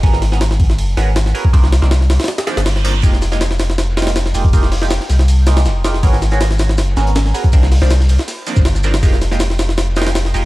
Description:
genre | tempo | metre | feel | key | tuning
drum and bass, jungle | 160 BPM | 4/4 | straight | F dorian | A4 = 440 Hz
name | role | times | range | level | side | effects
band-passed chord stab | stabs | 0.0-10.4 s | Eb3 to Bb4 | -22 LUFS | right 3 dB | phaser, dub echo
saturated sub bass | bass | 0.0-10.5 s | F1 to C2 | -14 LUFS | equal | none
jungle sampler-style drum kit | drums | 0.0-10.4 s | hi-hat, kick drum, ride cymbal, snare drum | -16 LUFS | equal | none
reverse cymbal | sound effects | 2.5-3.0 s | none | -28 LUFS | right 6 dB | none
crunchy breakbeat drum kit | drums | 3.0-10.4 s | hi-hat, shaker, snare drum | -31 LUFS | left 3 dB | high-pass filter on hats, high-pass filter on snare, high-pass filter on perc, high-pass filter on room
room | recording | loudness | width
small room ambience | dark, warm production | -12 LUFS | side -18 dB against mid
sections
0.0-10.5 A section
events
break 2.3-3.0; reverse cymbal 2.5-3.0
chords
0.0 Abm11; 1.5 Cm11; 3.0 Fm11; 6.0 Abm11; 7.5 Cm11; 9.0 Fm11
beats
| 0.03 0.41 0.78 1.16 | 1.53 1.91 2.28 2.66 | 3.03 3.41 3.78 4.16 | 4.53 4.91 5.28 5.66 | 6.03 6.41 6.78 7.16 | 7.53 7.91 8.28 8.66 | 9.03 9.41 9.78 10.16

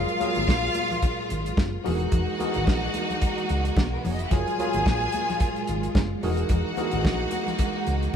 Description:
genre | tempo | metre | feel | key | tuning
disco | 110 BPM | 4/4 | swing 56% on 16ths | F# major | A4 = 440 Hz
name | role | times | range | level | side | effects
bright studio violin section | second line | 0.0-8.2 s | A#3 to G#5 | -30 LUFS | left 1 dB | none
tine electric piano | accompaniment | 0.0-8.2 s | E3 to A#4 | -29 LUFS | left 1 dB | overdrive, fast stereo tremolo
clear studio string section | sustained chords | 0.0-8.2 s | A#2 to F#4 | -32 LUFS | right 2 dB | none
hollow-body short-scale fingered electric bass | bass | 0.0-8.1 s | E1 to C#2 | -28 LUFS | equal | none
damped 70s drum kit | drums | 0.1-8.1 s | hi-hat, kick drum, snare drum | -25 LUFS | equal | none
congas | percussion | 0.2-8.2 s | none | -35 LUFS | left 1 dB | none
room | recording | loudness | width
moderate studio reverb, RT60 0.6 s | band playing live in one room | -22 LUFS | side -8 dB against mid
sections
0.0-8.2 A section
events
none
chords
0.0 F#maj9; 1.8 Emaj9#11; 4.3 F#maj9; 6.2 Emaj9#11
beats
0.48 1.03 1.57 | 2.12 2.67 3.22 3.77 | 4.31 4.86 5.41 5.95 | 6.50 7.05 7.59 8.14

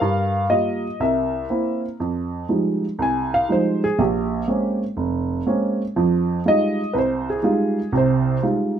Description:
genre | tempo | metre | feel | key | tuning
solo jazz | 121 BPM | 4/4 | swing 67% on 8ths | F minor | A4 = 440 Hz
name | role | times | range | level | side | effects
warm upright piano | solo | 0.0-8.8 s | F1 to Ab5 | -19 LUFS | right 2 dB | none
room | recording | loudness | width
light reverb | minimal, uncompressed stereo recording | -19 LUFS | side -8 dB against mid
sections
0.0-2.0 A section; 2.0-8.8 B section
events
upright piano solo 2.0-8.8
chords
0.0 Gm7; 1.0 C7; 2.0 Fm9; 4.0 Bbm9; 6.0 Fm9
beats
| 0.02 0.51 1.01 1.50 | 2.00 2.49 2.99 3.48 | 3.98 4.47 4.96 5.46 | 5.95 6.45 6.94 7.44 | 7.93 8.42

